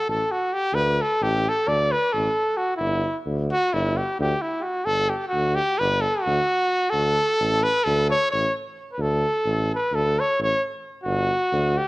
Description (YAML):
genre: balkan folk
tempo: 262 BPM (eighths)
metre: 9/8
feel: straight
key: D major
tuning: A4 = 436 Hz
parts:
  - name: clear trumpet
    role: melody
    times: 0.0-11.9 s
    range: E4 to D5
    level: -21 LUFS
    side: equal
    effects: none
  - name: warm tuba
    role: bass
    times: 0.1-11.8 s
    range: G1 to D2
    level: -26 LUFS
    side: equal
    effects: none
room: moderate recital hall reverb, RT60 1.6 s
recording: worn, warbling old tape, cassette tape, warbly pitch drift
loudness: -20 LUFS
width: side -20 dB against mid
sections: 0.0-11.9 A section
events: none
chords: 0.0 D5; 2.8 G5; 6.9 D5; 11.1 G5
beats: 0.06 0.28 0.51 | 0.74 0.97 1.20 1.43 1.66 1.89 2.12 2.34 2.57 | 2.80 3.03 3.26 3.49 3.72 3.95 4.17 4.40 4.63 | 4.86 5.09 5.32 5.55 5.78 6.01 6.24 6.46 6.69 | 6.92 7.15 7.38 7.61 7.84 8.07 8.30 8.53 8.76 | 8.99 9.21 9.45 9.67 9.90 10.13 10.36 10.59 10.82 | 11.05 11.28 11.51 11.74